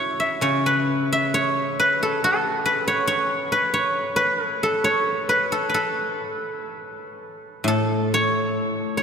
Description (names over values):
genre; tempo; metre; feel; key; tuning
chinese traditional, Chinese solo plucked strings; 61-70 BPM; 2/4; rubato; A gong mode; A4 = 438 Hz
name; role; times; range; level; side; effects
guzheng; solo; 0.0-9.0 s; A2 to E5; -20 LUFS; equal; none
room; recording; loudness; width
wet cathedral reverb, RT60 5.6 s; in a vast, echoing space; -19 LUFS; side -6 dB against mid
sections
0.0-7.7 A section; 7.7-9.0 B section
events
none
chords
none